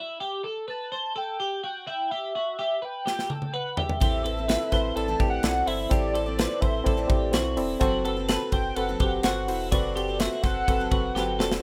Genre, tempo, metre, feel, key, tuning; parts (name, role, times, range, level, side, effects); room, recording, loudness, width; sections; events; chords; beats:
jangly indie pop; 126 BPM; 4/4; straight; A4 = 440 Hz
twelve-string electric guitar; arpeggios; 0.0-11.6 s; E4 to C5; -34 LUFS; equal; lush chorus
warm velvety synth lead; melody; 0.7-11.3 s; D5 to A5; -33 LUFS; equal; chorus, tremolo
modern studio drum kit; drums; 3.1-11.6 s; hi-hat, kick drum, ride cymbal, snare drum, toms; -29 LUFS; equal
picked steel-string acoustic guitar; accompaniment; 4.0-11.6 s; A2 to A4; -40 LUFS; equal
reed electric piano; accompaniment; 4.0-11.6 s; C4 to D5; -31 LUFS; equal
warm sub bass; bass; 4.0-11.6 s; E1 to B1; -35 LUFS; equal
little or no reverb; rough home demo mix; -26 LUFS; mono
0.0-11.6 A section
drum fill 3.1-4.0, 11.2-11.6
0.0 Em; 4.0 Am
| 0.21 0.69 1.16 1.64 | 2.11 2.59 3.06 3.54 | 4.01 4.49 4.96 5.44 | 5.91 6.39 6.87 7.34 | 7.82 8.29 8.77 9.24 | 9.72 10.20 10.68 11.15